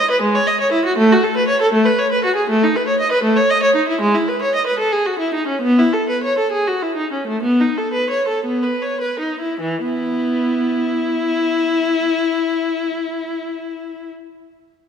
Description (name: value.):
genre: classical, baroque-style suite movement for unaccompanied viola.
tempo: 49-81 BPM (dotted quarters).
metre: 12/8.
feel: rubato.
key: E major.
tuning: A4 = 439 Hz.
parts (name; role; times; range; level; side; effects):
rich viola; solo; 0.0-14.1 s; E3 to D#5; -16 LUFS; equal; none.
room: moderate scoring stage reverb, RT60 1.9 s.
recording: recorded in a church or concert hall.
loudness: -15 LUFS.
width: side -7 dB against mid.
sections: 0.0-9.6 A section; 9.6-14.3 B section.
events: slowing down 3.5-9.6.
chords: 0.0 E/G#; 1.0 F#m/A; 2.5 B7/A; 4.0 E/G#; 5.6 B7sus4; 7.4 B7; 9.6 E5.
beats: 0.21 0.96 1.72 | 2.48 3.23 3.98 4.78 | 5.63 6.52 7.43 8.43 | 9.61 10.77 11.93 13.11.